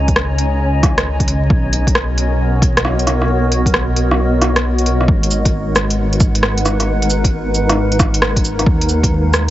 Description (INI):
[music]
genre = future garage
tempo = 134 BPM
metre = 4/4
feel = swing 65% on 16ths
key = G# minor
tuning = A4 = 440 Hz
[part]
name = granular cloud pad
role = sustained chords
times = 0.0-9.5 s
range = G#3 to A#5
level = -19 LUFS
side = equal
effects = built-in reverb, sidechain pumping
[part]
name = dark detuned saw bass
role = bass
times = 0.0-9.5 s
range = G#1 to D#2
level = -17 LUFS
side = equal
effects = sidechain pumping
[part]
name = electronic kick drum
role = drums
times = 0.1-9.1 s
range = none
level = -16 LUFS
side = equal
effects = overdrive
[part]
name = organic electronic drum kit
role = drums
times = 0.1-9.5 s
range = cabasa, hi-hat, rim click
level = -18 LUFS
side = equal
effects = none
[sound]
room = light reverb, digital ambience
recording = heavily compressed radio sound, vinyl crackle, nothing above 7.8 kHz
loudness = -13 LUFS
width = side -14 dB against mid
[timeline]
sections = 0.0-5.1 A section; 5.1-9.5 B section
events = kick drops out 4.2-5.1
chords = 0.0 G#sus24/C#; 1.5 Bmaj9; 5.1 G#m7; 8.7 D#m11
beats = 0.16 0.61 1.06 | 1.50 1.95 2.40 2.85 | 3.29 3.74 4.19 4.64 | 5.09 5.53 5.98 6.43 | 6.88 7.33 7.77 8.22 | 8.67 9.12